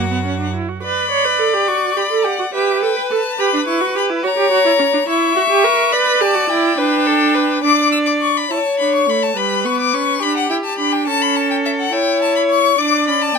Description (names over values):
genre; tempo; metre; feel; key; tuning
classical, baroque-style fugue for string quartet; 70 BPM (dotted quarters); 12/8; straight; B minor; A4 = 445 Hz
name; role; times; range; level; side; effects
clear violin; melody; 0.0-13.4 s; E5 to E6; -18 LUFS; left 7 dB; none
rich violin; second line; 0.0-13.4 s; F#4 to E5; -19 LUFS; left 3 dB; none
rich viola; accompaniment; 0.0-13.4 s; G3 to C#5; -18 LUFS; right 5 dB; none
rich cello; bass; 0.0-0.5 s; F#2; -24 LUFS; right 5 dB; none
room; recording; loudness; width
light reverb; close, detailed microphones; -14 LUFS; side -5 dB against mid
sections
0.8-7.6 A section; 7.6-13.4 B section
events
none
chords
0.0 F#5; 0.8 Bm; 2.5 Em/G; 4.2 F#7; 5.9 Bm; 7.6 D5; 9.4 G; 11.1 A7/C#; 12.8 D5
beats
| 0.82 1.68 2.54 3.39 | 4.23 5.08 5.93 6.78 | 7.64 8.50 9.36 10.22 | 11.07 11.93 12.79